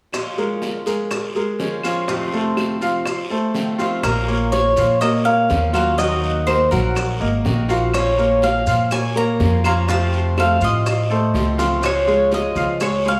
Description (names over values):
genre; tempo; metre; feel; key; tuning
latin, Cuban son and guajira; 123 BPM; 4/4; straight; Bb minor; A4 = 439 Hz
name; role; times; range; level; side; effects
picked swing-style acoustic guitar; accompaniment; 0.1-12.9 s; F2 to Gb4; -29 LUFS; equal; none
bongos; percussion; 0.1-13.2 s; none; -31 LUFS; equal; none
claves; percussion; 0.1-13.1 s; none; -34 LUFS; equal; none
guiro; percussion; 0.1-13.2 s; none; -37 LUFS; equal; none
maracas; percussion; 0.1-13.2 s; none; -41 LUFS; equal; none
clear concert grand piano; arpeggios; 0.4-13.2 s; F3 to Gb5; -24 LUFS; equal; none
Cuban tres; melody; 4.0-13.2 s; Bb4 to Bb5; -22 LUFS; equal; none
upright bass; bass; 4.0-13.2 s; Ab1 to Bb2; -24 LUFS; equal; none
room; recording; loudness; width
moderate large studio reverb, RT60 1.4 s; small room ambience; -19 LUFS; mono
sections
0.1-4.0 A section; 4.0-13.2 B section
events
drum fill 11.4-11.8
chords
0.1 Bbm7; 2.1 F7; 4.0 Bbm; 6.0 Ebm; 7.9 Bbm; 9.9 F; 11.8 Db